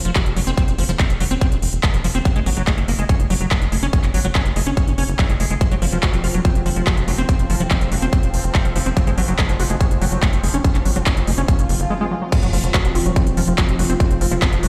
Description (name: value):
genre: psychedelic trance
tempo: 143 BPM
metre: 4/4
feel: straight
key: unclear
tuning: A4 = 440 Hz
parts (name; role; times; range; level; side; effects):
- liquid acid bass; riff; 0.1-14.7 s; F3 to Gb4; -27 LUFS; equal; chorus, sidechain pumping, digital delay
- tight sequencer bass; bass; 0.1-14.7 s; F1 to Ab1; -22 LUFS; equal; none
- big-room dance drum kit; drums; 0.1-14.7 s; crash cymbal, handclaps, hi-hat; -28 LUFS; equal; none
- electronic kick drum; drums; 0.2-14.5 s; none; -20 LUFS; equal; none
- bubbling stepped-filter texture; sustained chords; 5.6-14.7 s; F3 to C4; -30 LUFS; equal; chorus, built-in reverb, sidechain pumping
- swell and sub drop; sound effects; 11.6-14.0 s; none; -31 LUFS; equal; none
- warbly tape-like pad; texture; 12.7-14.7 s; C4 to F5; -31 LUFS; equal; chorus, built-in reverb, sidechain pumping
room: light reverb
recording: played on a big sound system in a bare room, stone room reverb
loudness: -18 LUFS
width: mono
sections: 0.0-12.3 A section; 12.3-14.7 B section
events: swell 11.6-12.3; drop 12.3-14.7; impact 12.3-14.0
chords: 0.0 F5; 2.3 Gb5; 5.6 F5; 9.0 Gb5; 12.3 F5